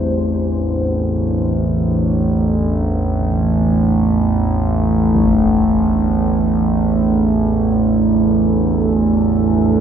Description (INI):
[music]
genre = dark ambient drone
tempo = free time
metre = none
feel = none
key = unclear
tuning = A4 = 438 Hz
[part]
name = deep dark ambient pad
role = sustained chords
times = 0.0-9.8 s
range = A3 to C5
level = -16 LUFS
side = right 3 dB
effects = chorus, built-in reverb
[part]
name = analog drone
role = drone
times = 0.0-9.8 s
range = A1 to E2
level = -17 LUFS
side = left 1 dB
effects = chorus
[part]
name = impact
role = percussion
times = 5.1-5.4 s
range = none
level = -25 LUFS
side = equal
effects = low-pass filter on sfx
[sound]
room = wet lush hall reverb, RT60 2.9 s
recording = dreamy mix soaked in reverb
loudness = -14 LUFS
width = side -8 dB against mid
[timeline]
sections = 0.0-9.8 A section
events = none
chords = 0.0 Am; 5.2 Dm/A